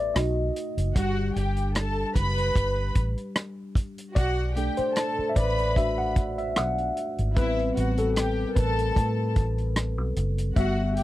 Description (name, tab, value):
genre	lush 1970s-style soul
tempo	75 BPM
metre	4/4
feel	swing 54% on 16ths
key	unclear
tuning	A4 = 440 Hz
part	tine electric piano	accompaniment	0.0-11.0 s	G3 to F#5	-29 LUFS	left 1 dB	lush chorus
part	vintage muted fingered electric bass	bass	0.0-11.0 s	F#1 to A2	-27 LUFS	equal	none
part	warm soul drum kit	drums	0.2-11.0 s	hi-hat, kick drum, rim click	-25 LUFS	equal	none
part	warm symphonic string section	second line	1.0-11.0 s	E4 to B5	-30 LUFS	equal	none
room	little or no reverb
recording	dry, close 1970s-style studio recording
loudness	-23 LUFS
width	side -15 dB against mid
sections	0.0-11.0 A section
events	tine electric piano solo 0.0-11.0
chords	0.2 B7; 1.0 G; 4.2 Bm7; 7.4 Am7